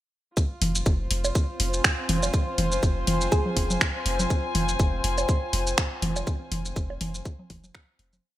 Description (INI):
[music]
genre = minimal techno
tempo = 122 BPM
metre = 4/4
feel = swing 56% on 16ths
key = F minor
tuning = A4 = 440 Hz
[part]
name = electronic kick drum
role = drums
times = 0.4-7.9 s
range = none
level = -24 LUFS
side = equal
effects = studio ambience
[part]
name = garage drum kit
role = drums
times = 0.4-8.2 s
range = finger snaps, hi-hat, shaker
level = -27 LUFS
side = equal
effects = studio ambience, gated reverb
[part]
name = bubbling stepped-filter texture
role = texture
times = 0.8-8.2 s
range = C4 to C5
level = -38 LUFS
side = equal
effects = chorus, built-in reverb, sidechain pumping
[part]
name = dark chamber string section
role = texture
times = 0.4-8.2 s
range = F4 to Ab5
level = -32 LUFS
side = left 2 dB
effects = sidechain pumping
[part]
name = punchy sub bass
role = bass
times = 0.6-8.2 s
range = F1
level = -29 LUFS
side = equal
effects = sidechain pumping
[part]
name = electronic toms, bongos and congas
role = percussion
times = 0.6-8.2 s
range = none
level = -31 LUFS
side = right 1 dB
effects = studio ambience, gated reverb, digital delay
[part]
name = thumb-piano-like synth pluck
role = melody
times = 3.3-3.7 s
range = Ab4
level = -30 LUFS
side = right 1 dB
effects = chorus, digital delay
[sound]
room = moderate plate reverb, RT60 1.6 s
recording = bright 1980s-style digital production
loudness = -23 LUFS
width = side -14 dB against mid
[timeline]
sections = 0.4-8.2 drop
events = drop 0.4-8.2; fade-out 5.6-8.2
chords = 0.4 Fm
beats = | 0.37 0.86 1.35 1.84 | 2.34 2.83 3.32 3.81 | 4.30 4.80 5.29 5.78 | 6.27 6.76 7.25 7.75